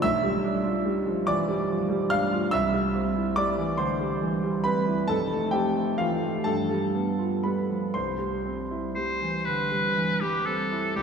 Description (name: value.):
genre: classical, romantic duo for oboe and grand piano.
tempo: 39-49 BPM (dotted quarters).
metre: 6/8.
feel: rubato.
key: C major.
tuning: A4 = 440 Hz.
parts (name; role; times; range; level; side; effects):
clear concert grand piano; accompaniment; 0.0-11.0 s; F1 to F6; -24 LUFS; right 1 dB; none.
bright oboe; melody; 9.0-11.0 s; G4 to C5; -26 LUFS; left 1 dB; none.
room: wet church reverb, RT60 3.6 s.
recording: none.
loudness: -24 LUFS.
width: side -6 dB against mid.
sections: 0.0-11.0 A section.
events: none.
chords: 0.0 G7/B; 2.5 C; 5.1 Fmaj7; 6.5 G7; 7.9 C.